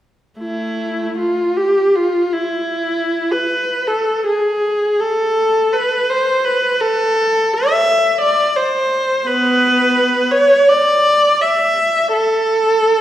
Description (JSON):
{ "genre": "classical, free, expressive piece for unaccompanied viola", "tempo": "75-87 BPM", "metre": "3/4", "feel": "rubato", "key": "A minor", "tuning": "A4 = 445 Hz", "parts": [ { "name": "clear viola", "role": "solo", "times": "0.4-13.0 s", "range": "A3 to E5", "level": "-13 LUFS", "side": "equal", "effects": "none" } ], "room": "wet recital hall reverb, RT60 1.8 s", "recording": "heard from further back in the room", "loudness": "-13 LUFS", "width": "side -12 dB against mid", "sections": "0.4-13.0 A section", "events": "none", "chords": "none", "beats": "| 0.40 1.18 1.93 | 2.72 3.50 4.26 | 5.00 5.74 6.45 | 7.16 7.87 8.57 | 9.27 9.97 10.69 | 11.41 12.13 12.88" }